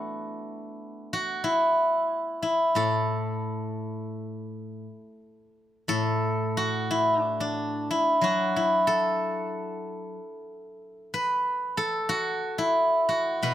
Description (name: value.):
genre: chinese traditional, Chinese solo plucked strings.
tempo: 91 BPM.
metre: 4/4.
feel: rubato.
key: A zhi mode.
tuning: A4 = 440 Hz.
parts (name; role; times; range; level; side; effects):
steel-string zither; solo; 0.0-13.5 s; A2 to B4; -25 LUFS; equal; none.
room: light reverb.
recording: close, detailed microphones.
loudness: -24 LUFS.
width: side -12 dB against mid.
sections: 0.0-5.6 A section; 5.6-13.5 B section.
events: none.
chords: none.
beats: | 0.14 0.79 1.45 2.10 | 2.77 3.44 4.14 4.85 | 5.56 6.25 6.92 7.58 | 8.23 8.89 9.53 10.17 | 10.81 11.46 12.11 12.77 | 13.44.